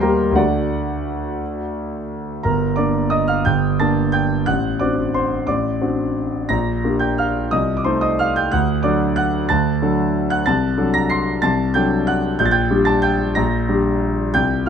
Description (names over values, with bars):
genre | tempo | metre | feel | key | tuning
classical, piano waltz | 169-195 BPM | 3/4 | rubato | G minor | A4 = 441 Hz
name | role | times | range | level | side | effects
clear concert grand piano | solo | 0.0-14.7 s | G1 to C7 | -16 LUFS | equal | none
room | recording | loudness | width
light reverb | dark, warm production | -16 LUFS | side -7 dB against mid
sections
0.0-2.4 A section; 2.4-14.7 B section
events
none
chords
0.4 D; 2.4 Gm; 4.5 D7/A; 6.5 Gm/Bb; 7.5 Adim/C; 8.5 D; 10.5 D7/C; 12.4 Gm/Bb